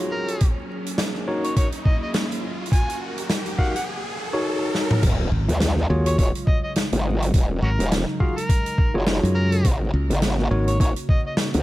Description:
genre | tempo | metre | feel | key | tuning
glitch hop | 104 BPM | 4/4 | swing 58% on 16ths | Eb minor | A4 = 440 Hz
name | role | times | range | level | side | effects
warm analog pad | sustained chords | 0.0-11.6 s | Db3 to Bb4 | -31 LUFS | left 1 dB | chorus, sidechain pumping
tine electric piano | stabs | 0.0-10.9 s | Eb4 to F5 | -29 LUFS | left 1 dB | medium tremolo, sidechain pumping, tape echo
riser and impact | sound effects | 0.0-7.3 s | none | -31 LUFS | equal | none
overdriven harmonica | melody | 0.1-11.3 s | Db4 to Ab5 | -31 LUFS | equal | tape echo
huge arena drum kit | drums | 0.3-11.6 s | crash cymbal, hi-hat, rim click, snare drum, toms | -27 LUFS | equal | none
electronic kick drum | drums | 0.4-11.2 s | none | -19 LUFS | equal | none
growl bass | bass | 5.0-11.6 s | Eb1 to Eb2 | -22 LUFS | equal | chorus
modern bright fingered electric bass | bass | 5.3-10.8 s | Ab1 to Gb2 | -20 LUFS | equal | none
room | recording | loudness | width
small room ambience | vinyl crackle | -19 LUFS | side -16 dB against mid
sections
0.0-5.0 A section; 5.0-11.6 B section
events
build-up 0.0-5.0; riser 0.0-5.0; drum fill 4.7; drop 5.0-11.6; impact 5.0-7.3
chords
0.4 Ab9sus4; 5.0 Ebm11; 9.6 Ab9sus4

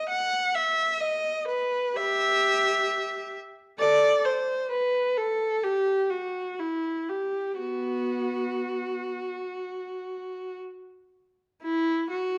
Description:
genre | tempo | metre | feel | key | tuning
classical, baroque-style suite movement for unaccompanied viola | 58-67 BPM | 4/4 | rubato | E minor | A4 = 439 Hz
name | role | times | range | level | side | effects
rich viola | solo | 0.0-12.4 s | B3 to F#5 | -27 LUFS | equal | none
room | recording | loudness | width
moderate recital hall reverb, RT60 1.2 s | worn, warbling old tape, cassette tape, warbly pitch drift | -27 LUFS | mono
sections
0.0-11.6 A section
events
none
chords
none

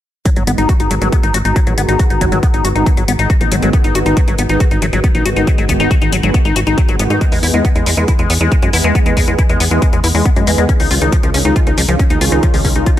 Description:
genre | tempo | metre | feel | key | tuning
uplifting trance | 138 BPM | 4/4 | straight | G# minor | A4 = 440 Hz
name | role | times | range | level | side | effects
supersaw pad | sustained chords | 0.3-13.0 s | D#3 to G#4 | -20 LUFS | right 1 dB | phaser, sidechain pumping, low-pass filter
liquid acid bass | arpeggios | 0.3-13.0 s | E#3 to F#4 | -18 LUFS | left 4 dB | phaser, sidechain pumping, ping-pong delay
electronic hi-hat | drums | 0.3-13.0 s | none | -22 LUFS | left 3 dB | sidechain pumping on hats
electronic kick drum | drums | 0.3-13.0 s | none | -14 LUFS | equal | none
tight sequencer bass | bass | 0.4-13.0 s | G#1 to G#2 | -16 LUFS | equal | sidechain pumping
room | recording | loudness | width
little or no reverb | lossy compression artefacts | -11 LUFS | side -12 dB against mid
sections
0.3-13.0 A section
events
filter sweep on supersaw synth 0.3-13.0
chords
0.3 G#m7; 7.2 E; 10.7 C#add9

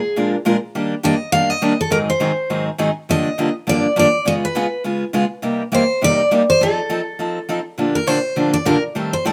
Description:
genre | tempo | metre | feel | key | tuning
jazz | 205 BPM | 4/4 | swing 58% on 8ths | Bb major | A4 = 440 Hz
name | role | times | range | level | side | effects
picked steel-string acoustic guitar | melody | 0.0-9.3 s | Ab4 to F5 | -20 LUFS | equal | none
picked steel-string acoustic guitar | accompaniment | 0.2-9.3 s | G2 to Bb4 | -21 LUFS | equal | none
room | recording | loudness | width
moderate studio reverb, RT60 0.6 s | none | -18 LUFS | mono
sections
0.0-7.8 A section; 7.8-9.3 B section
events
steel-string acoustic guitar solo 7.8-9.3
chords
0.0 Bb7; 0.7 Ebmaj7; 1.9 Ab7; 3.1 Gm7; 4.3 Db7; 5.4 Cm7; 6.6 F7; 7.8 Bb6

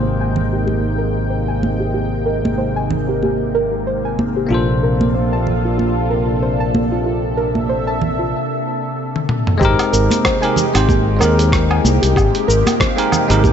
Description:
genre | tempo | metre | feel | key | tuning
sunset chillout | 94 BPM | 4/4 | swing 57% on 16ths | Ab major | A4 = 441 Hz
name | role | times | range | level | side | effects
bell-like tine electric piano | accompaniment | 0.0-13.5 s | Ab3 to C5 | -22 LUFS | moving between left 5 dB and right 5 dB | auto-pan, ping-pong delay
lush unison pad | sustained chords | 0.0-13.5 s | C3 to G5 | -21 LUFS | equal | chorus, phaser
soft round pluck | arpeggios | 0.0-13.5 s | F4 to A5 | -22 LUFS | right 1 dB | chorus, ping-pong delay
fingered electric bass | bass | 0.0-13.5 s | Ab1 to Eb2 | -19 LUFS | equal | none
congas | percussion | 0.4-13.5 s | none | -22 LUFS | right 4 dB | none
dusty soul sampler-style drum kit | drums | 9.2-13.5 s | hi-hat, rim click, shaker, toms, woodblock | -20 LUFS | equal | overdrive, low-pass filter on hats, studio reverb, low-pass filter on perc, low-pass filter on snare, low-pass filter on toms
electronic kick drum | drums | 9.6-13.5 s | none | -19 LUFS | equal | overdrive, studio reverb
room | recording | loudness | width
light reverb | nothing above 7.9 kHz | -14 LUFS | side -8 dB against mid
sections
0.0-9.6 A section; 9.6-13.5 B section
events
filter sweep on synth arpeggio sound 0.0-9.6; drum fill 9.1-9.6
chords
0.0 Abmaj9; 4.5 Bbmaj9; 9.6 Abmaj9

